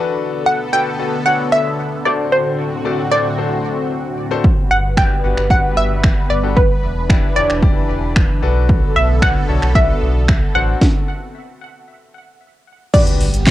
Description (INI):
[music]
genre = dance-pop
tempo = 113 BPM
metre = 4/4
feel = straight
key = B minor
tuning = A4 = 440 Hz
[part]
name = bright concert grand piano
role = accompaniment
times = 0.0-13.5 s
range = A3 to D5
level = -23 LUFS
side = left 7 dB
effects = cassette tape
[part]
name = lush unison pad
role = sustained chords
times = 0.0-13.5 s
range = A2 to B4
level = -23 LUFS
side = equal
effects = chorus, phaser, sidechain pumping, cassette tape
[part]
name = wide unison pluck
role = melody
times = 0.5-13.5 s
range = B4 to G5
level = -18 LUFS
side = equal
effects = cassette tape, tape echo
[part]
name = house drum kit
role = drums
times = 4.4-13.5 s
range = crash cymbal, finger snaps, handclaps, hi-hat, kick drum, shaker, snare drum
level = -14 LUFS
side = equal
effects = overdrive, cassette tape
[part]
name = sub bass with octave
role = bass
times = 4.7-13.5 s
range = E1 to B1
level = -18 LUFS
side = equal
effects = sidechain pumping
[part]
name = impact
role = sound effects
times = 13.0-13.5 s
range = none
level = -23 LUFS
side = equal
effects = none
[part]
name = group handclap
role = percussion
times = 13.5 s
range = none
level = -27 LUFS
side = right 13 dB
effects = none
[sound]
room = light reverb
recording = home recording on cassette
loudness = -13 LUFS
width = side -14 dB against mid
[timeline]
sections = 0.0-12.9 A section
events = stop 10.8-12.9; impact 12.9-13.5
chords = 0.0 Bm7; 2.1 D7/A; 4.4 Gmaj7; 6.6 Em7; 8.4 Bm7; 10.6 D7/A; 12.9 Gmaj7